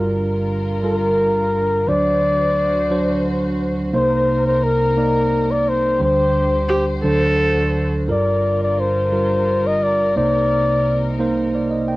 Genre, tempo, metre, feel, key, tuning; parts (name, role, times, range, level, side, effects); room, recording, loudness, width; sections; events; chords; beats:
acoustic folk-pop ballad; 58 BPM (dotted quarters); 6/8; straight; G minor; A4 = 437 Hz
tine electric piano; accompaniment; 0.0-12.0 s; G1 to G5; -19 LUFS; right 1 dB; cassette tape
dark studio string section; sustained chords; 0.0-12.0 s; C2 to C5; -27 LUFS; left 1 dB; cassette tape
warm flugelhorn; melody; 0.8-11.2 s; Bb4 to Eb5; -18 LUFS; left 2 dB; cassette tape
warm viola; second line; 6.7-7.9 s; G4 to A4; -20 LUFS; right 1 dB; cassette tape
light reverb; home recording on cassette; -16 LUFS; side -19 dB against mid
0.0-12.0 A section
0.0 Gm7; 1.9 D7; 3.9 Cm7; 6.0 D7sus4; 7.0 D7; 8.1 Gm7; 10.2 Cm7
0.84 | 1.88 2.91 | 3.94 4.97 | 6.01 7.05 | 8.09 9.13 | 10.16 11.20